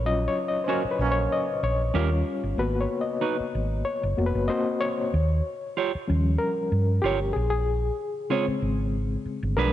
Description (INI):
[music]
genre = lush 1970s-style soul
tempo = 94 BPM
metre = 4/4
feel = swing 54% on 16ths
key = G# dorian, Bb dorian from 5.1 s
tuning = A4 = 440 Hz
[part]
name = overdriven reed electric piano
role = accompaniment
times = 0.0-9.7 s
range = Db3 to D#5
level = -26 LUFS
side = left 3 dB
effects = medium tremolo
[part]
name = hollow-body short-scale fingered electric bass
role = bass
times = 0.0-9.7 s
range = E#1 to G2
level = -25 LUFS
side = right 1 dB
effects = none
[part]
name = mellow electric guitar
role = riff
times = 0.7-9.7 s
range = C#4 to Db5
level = -30 LUFS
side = right 7 dB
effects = none
[part]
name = warm trombone section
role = stabs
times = 0.7-1.5 s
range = F#3 to C#4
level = -30 LUFS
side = right 4 dB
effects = none
[sound]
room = light reverb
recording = dark, warm production, nothing above 10.6 kHz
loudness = -23 LUFS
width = side -12 dB against mid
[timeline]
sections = 0.0-5.1 A section; 5.1-9.7 B section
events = reed electric piano solo 0.0-5.1, 5.1-9.7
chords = 0.0 Bmaj9#11/A#; 1.9 D#7; 2.6 G#m7; 4.5 D#m6/A#; 5.1 Eb9; 7.4 Bbm7